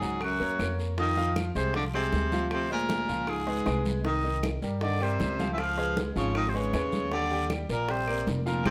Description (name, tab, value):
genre	Afro-Cuban jazz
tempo	156 BPM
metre	4/4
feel	straight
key	Eb major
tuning	A4 = 442 Hz
part	clear oboe	melody	0.0-8.7 s	Gb4 to F5	-34 LUFS	equal	none
part	breathy baritone saxophone	second line	0.0-8.7 s	Gb2 to F3	-36 LUFS	equal	none
part	clear concert grand piano	accompaniment	0.0-8.7 s	Eb3 to G5	-35 LUFS	equal	none
part	upright bass	bass	0.0-8.7 s	F1 to G2	-34 LUFS	equal	none
part	guiro	percussion	0.0-8.7 s	none	-49 LUFS	equal	none
part	bongos	percussion	0.2-8.7 s	none	-42 LUFS	equal	none
part	claves	percussion	0.2-8.7 s	none	-45 LUFS	equal	none
part	congas	percussion	0.2-8.7 s	none	-38 LUFS	equal	none
room	moderate studio reverb, RT60 0.7 s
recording	none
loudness	-29 LUFS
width	mono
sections	0.0-8.7 A section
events	none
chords	0.0 Gb69; 1.0 Fm7; 2.5 Dm7b5; 3.3 Db7; 4.1 Cm7; 5.6 Db9; 7.1 Ebmaj9